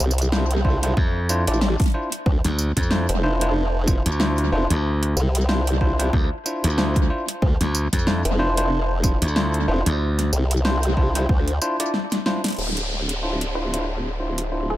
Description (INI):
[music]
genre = glitch hop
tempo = 93 BPM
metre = 4/4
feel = swing 57% on 16ths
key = D minor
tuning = A4 = 439 Hz
[part]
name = formant-sweep wobble bass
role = bass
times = 0.0-14.8 s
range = D1 to D2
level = -22 LUFS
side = equal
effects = chorus, tube saturation
[part]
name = pop drum kit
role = drums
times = 0.0-14.5 s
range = crash cymbal, hi-hat, rim click, snare drum, tambourine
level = -26 LUFS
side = equal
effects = overdrive, tape echo
[part]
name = bell-like tine electric piano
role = stabs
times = 0.3-14.7 s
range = D4 to D5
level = -26 LUFS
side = equal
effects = vintage 12-bit sampler grit, sidechain pumping, low-pass filter, tape echo
[part]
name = electronic kick drum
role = drums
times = 0.6-11.4 s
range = none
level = -20 LUFS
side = equal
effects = overdrive
[part]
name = glassy slap bass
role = bass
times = 1.0-10.3 s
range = D2 to F2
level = -21 LUFS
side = equal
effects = tube saturation
[part]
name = downlifter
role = sound effects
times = 12.6-14.8 s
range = none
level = -30 LUFS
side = equal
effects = none
[part]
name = woody wave-folded pluck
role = melody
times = 13.6-14.8 s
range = A4 to C5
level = -32 LUFS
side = right 1 dB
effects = none
[sound]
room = light reverb, digital ambience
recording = echo-heavy mix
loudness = -19 LUFS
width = side -14 dB against mid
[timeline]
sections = 0.0-12.6 A section; 12.6-14.8 B section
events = break 11.9-12.6; drum fill 11.9-12.6; filter sweep on tine electric piano 12.6-14.8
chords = 0.0 Dm9